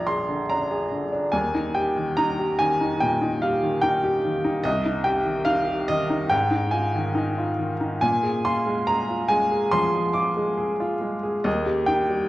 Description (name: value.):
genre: classical, romantic character piece for solo piano.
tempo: 71 BPM.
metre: 4/4.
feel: rubato.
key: unclear.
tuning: A4 = 440 Hz.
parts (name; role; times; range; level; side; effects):
clear upright piano; solo; 0.0-12.3 s; Bb1 to D6; -21 LUFS; equal; none.
room: wet recital hall reverb, RT60 1.4 s.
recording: worn, warbling old tape, cassette tape, warbly pitch drift.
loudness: -21 LUFS.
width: side -16 dB against mid.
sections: 0.0-12.3 A section.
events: none.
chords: 0.0 Bb7; 1.3 Eb; 4.7 Cm; 6.3 Fm7/Ab; 8.0 Bb7; 11.5 Eb.